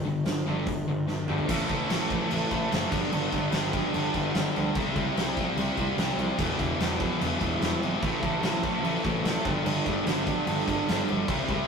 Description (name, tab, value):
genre	hard rock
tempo	147 BPM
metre	4/4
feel	straight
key	A minor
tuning	A4 = 445 Hz
part	cranked stack guitar	riff	0.0-11.7 s	E2 to C4	-32 LUFS	right 4 dB	overdrive
part	distorted electric guitar	riff	0.0-11.7 s	E2 to C4	-32 LUFS	left 5 dB	overdrive
part	fuzz picked electric bass	bass	0.1-11.6 s	E1 to D2	-32 LUFS	equal	overdrive
part	big rock drum kit	drums	0.3-11.6 s	crash cymbal, hi-hat, kick drum, snare drum, toms	-30 LUFS	equal	none
part	distorted electric guitar	riff	1.5-11.7 s	G2 to E4	-33 LUFS	right 1 dB	overdrive
room	moderate studio reverb, RT60 0.6 s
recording	rough rehearsal-room recording, tube saturation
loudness	-25 LUFS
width	side -6 dB against mid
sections	0.0-1.5 A section; 1.5-11.7 B section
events	drum fill 1.1-1.5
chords	0.0 G5; 1.5 Am; 2.9 G; 4.8 C; 6.4 Em; 8.0 Am; 9.5 G